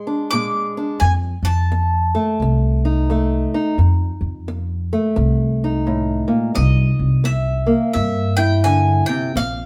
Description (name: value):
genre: acoustic country blues, solo or duo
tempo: 86 BPM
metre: 4/4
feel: swing 61% on 8ths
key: F mixolydian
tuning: A4 = 437 Hz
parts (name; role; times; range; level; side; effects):
- bowl-back mandolin; melody; 0.0-9.7 s; Eb5 to D6; -25 LUFS; equal; none
- fingerpicked old ladder-braced acoustic guitar; accompaniment; 0.0-9.7 s; F2 to E4; -23 LUFS; equal; none
- upright bass; bass; 1.0-9.7 s; Bb1 to G2; -20 LUFS; equal; none
room: moderate studio reverb, RT60 0.9 s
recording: band playing live in one room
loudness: -18 LUFS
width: mono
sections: 0.0-9.7 A section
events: none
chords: 0.0 Bb7; 1.0 F7; 6.6 C7